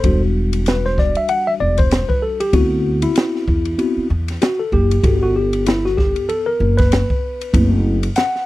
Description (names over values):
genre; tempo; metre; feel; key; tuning
hip hop, jazz-hop; 96 BPM; 4/4; swing 58% on 16ths; E minor; A4 = 443 Hz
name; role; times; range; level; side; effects
tine electric piano; accompaniment; 0.0-8.5 s; G3 to F#5; -18 LUFS; left 1 dB; medium stereo tremolo
upright bass; bass; 0.0-8.0 s; E1 to E2; -18 LUFS; equal; none
open jazz drum kit; drums; 0.0-8.4 s; hi-hat, kick drum, ride cymbal, snare drum; -19 LUFS; equal; none
room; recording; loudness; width
little or no reverb; dry, close 1970s-style studio recording; -15 LUFS; side -17 dB against mid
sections
0.0-8.5 A section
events
tine electric piano solo 0.0-8.5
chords
0.0 Em7; 2.5 D13; 5.0 Gmaj7; 7.5 F#m7b5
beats
| 0.04 0.66 1.29 1.91 | 2.54 3.16 3.79 4.41 | 5.04 5.66 6.29 6.91 | 7.54 8.16